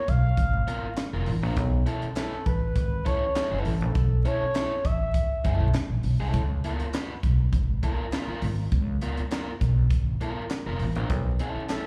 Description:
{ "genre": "funk", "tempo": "101 BPM", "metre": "4/4", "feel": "straight", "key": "unclear", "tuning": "A4 = 439 Hz", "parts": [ { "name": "expressive portamento lead", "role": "melody", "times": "0.0-5.7, 11.7-11.9 s", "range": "A4 to F5", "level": "-32 LUFS", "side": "equal", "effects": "chorus, slapback echo" }, { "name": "upright bass", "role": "bass", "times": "0.1-11.6 s", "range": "F1 to Db2", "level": "-28 LUFS", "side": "equal", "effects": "none" }, { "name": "crisp fusion drum kit", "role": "drums", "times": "0.1-11.8 s", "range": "handclaps, hi-hat, kick drum, snare drum", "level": "-32 LUFS", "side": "equal", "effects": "none" }, { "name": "raw garage guitar", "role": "accompaniment", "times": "0.7-11.9 s", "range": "Cb4 to Cb5", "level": "-37 LUFS", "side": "equal", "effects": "overdrive, slapback echo" } ], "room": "little or no reverb", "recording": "live gig heard through the venue's PA, club reverb, vinyl crackle", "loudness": "-26 LUFS", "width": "mono", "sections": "0.0-11.9 A section", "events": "none", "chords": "0.0 Db6 (rootless); 1.6 Cb9sus4; 6.3 Db6 (rootless); 11.1 Cb9sus4" }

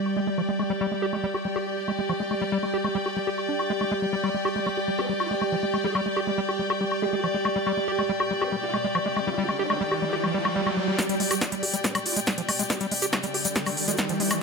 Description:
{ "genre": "psychedelic trance", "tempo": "140 BPM", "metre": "4/4", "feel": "straight", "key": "unclear", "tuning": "A4 = 439 Hz", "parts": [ { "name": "overtone-sweeping drone", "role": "sustained chords", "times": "0.0-14.4 s", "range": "G3", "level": "-32 LUFS", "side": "right 3 dB", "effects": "chorus, built-in reverb, sidechain pumping" }, { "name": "rich chamber string section", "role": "texture", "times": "0.0-14.4 s", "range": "G4 to G5", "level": "-29 LUFS", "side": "left 2 dB", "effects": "sidechain pumping" }, { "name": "techno drum kit", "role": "drums", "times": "0.1-14.4 s", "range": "hi-hat, snare drum, woodblock", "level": "-29 LUFS", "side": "left 2 dB", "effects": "low-pass filter on snare, low-pass filter on hats, low-pass filter on perc, low-pass filter on toms" }, { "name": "overdriven acid bass", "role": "riff", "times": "0.2-14.3 s", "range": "F3 to G4", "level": "-29 LUFS", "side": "moving between left 5 dB and right 4 dB", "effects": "auto-pan, sidechain pumping, ping-pong delay" }, { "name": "vowel-sweep wobble bass", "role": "second line", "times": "5.0-14.1 s", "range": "C4 to G4", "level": "-37 LUFS", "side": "right 4 dB", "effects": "ensemble chorus, sidechain pumping, high-pass filter, ping-pong delay" }, { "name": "riser", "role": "sound effects", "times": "8.6-14.4 s", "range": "none", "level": "-32 LUFS", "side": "right 3 dB", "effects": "none" }, { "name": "electronic kick drum", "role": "drums", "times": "11.0-14.1 s", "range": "none", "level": "-30 LUFS", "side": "equal", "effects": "high-pass filter on kick" }, { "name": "egg shaker", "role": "percussion", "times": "11.0-14.4 s", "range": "none", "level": "-32 LUFS", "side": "left 2 dB", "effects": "none" } ], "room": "moderate plate reverb, RT60 1.8 s, digital ambience", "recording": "none", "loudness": "-23 LUFS", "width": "side -4 dB against mid", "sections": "0.0-11.0 A section; 11.0-14.4 B section", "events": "riser 8.6-11.0, 11.0-14.4; build-up 11.0-14.4; drum fill 11.0-14.4", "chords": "0.0 G5" }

